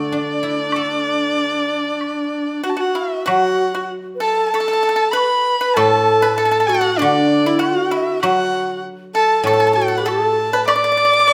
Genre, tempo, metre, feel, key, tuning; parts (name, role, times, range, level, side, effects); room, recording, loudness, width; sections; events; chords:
chinese traditional, Chinese chamber ensemble; 97 BPM; 4/4; straight; D gong mode; A4 = 439 Hz
warm erhu; melody; 0.0-11.3 s; D5 to D6; -21 LUFS; equal
bright reedy low xiao; second line; 0.0-11.3 s; D4 to B5; -22 LUFS; equal
pipa; second line; 0.0-11.3 s; D4 to D5; -25 LUFS; equal
guzheng; accompaniment; 0.0-11.3 s; A2 to A4; -25 LUFS; equal
woodblock; percussion; 0.7-10.8 s; -28 LUFS; equal
moderate recital hall reverb, RT60 1.5 s; -17 LUFS; mono
0.0-3.3 A section; 3.3-11.3 B section